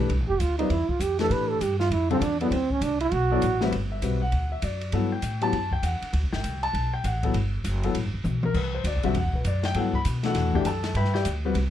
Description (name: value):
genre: modal jazz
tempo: 199 BPM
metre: 4/4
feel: swing 63% on 8ths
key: G major from 3.7 s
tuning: A4 = 439 Hz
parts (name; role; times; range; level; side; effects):
- dark concert grand piano; accompaniment; 0.0-11.6 s; A2 to B5; -28 LUFS; left 5 dB; none
- upright bass; bass; 0.0-11.7 s; F1 to B2; -26 LUFS; equal; none
- open jazz drum kit; drums; 0.1-11.6 s; crash cymbal, hi-hat, kick drum, ride cymbal, snare drum, toms; -33 LUFS; left 1 dB; none
- breathy trombone; second line; 0.3-3.7 s; Cb4 to Cb5; -25 LUFS; right 4 dB; none
room: little or no reverb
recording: dark, warm production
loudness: -23 LUFS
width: side -11 dB against mid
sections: 0.0-3.7 A section; 3.7-11.7 A section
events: trombone solo 0.0-3.7; drum fill 8.2-8.5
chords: 0.0 Fmaj9; 2.5 D13; 3.7 Gmaj9; 8.5 Cmaj9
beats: | 0.10 0.40 0.70 1.00 | 1.31 1.61 1.91 2.21 | 2.51 2.81 3.12 3.42 | 3.72 4.02 4.32 4.62 | 4.92 5.23 5.53 5.83 | 6.13 6.43 6.73 7.04 | 7.34 7.64 7.94 8.24 | 8.54 8.84 9.14 9.45 | 9.75 10.05 10.35 10.65 | 10.95 11.25 11.55